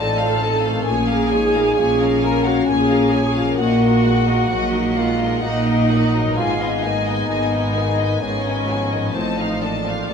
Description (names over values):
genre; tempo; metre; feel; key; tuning
cinematic, emotional film score for orchestra; 65 BPM; 3/4; rubato; Eb minor; A4 = 440 Hz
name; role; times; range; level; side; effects
rich studio violin section; melody; 0.0-10.1 s; Eb5 to A5; -28 LUFS; left 4 dB; none
mellow hollow silver concert flute; second line; 0.0-10.1 s; C5 to Bb5; -27 LUFS; left 2 dB; none
rich studio violin section; second line; 0.0-10.1 s; Gb4 to Ab5; -28 LUFS; left 3 dB; none
clear baby grand piano; accompaniment; 0.0-10.1 s; Ab2 to F4; -26 LUFS; equal; none
dark studio viola section; accompaniment; 0.0-10.1 s; C4 to Bb4; -23 LUFS; right 1 dB; none
warm French horn section; sustained chords; 0.0-10.1 s; F3 to D5; -25 LUFS; left 4 dB; none
concert harp; arpeggios; 0.0-10.1 s; Ab2 to F4; -30 LUFS; left 9 dB; none
dark studio double bass section; bass; 0.0-10.1 s; Ab1 to Bb1; -25 LUFS; right 3 dB; none
warm studio cello section; bass; 0.0-10.1 s; Ab2 to Bb2; -23 LUFS; right 2 dB; none
room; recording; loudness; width
wet scoring stage reverb, RT60 1.6 s; none; -16 LUFS; side -6 dB against mid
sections
0.0-10.1 A section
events
none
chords
0.0 F7/A; 0.9 Bbm7; 3.6 Ebm/Bb; 6.4 Abm; 9.2 F7/A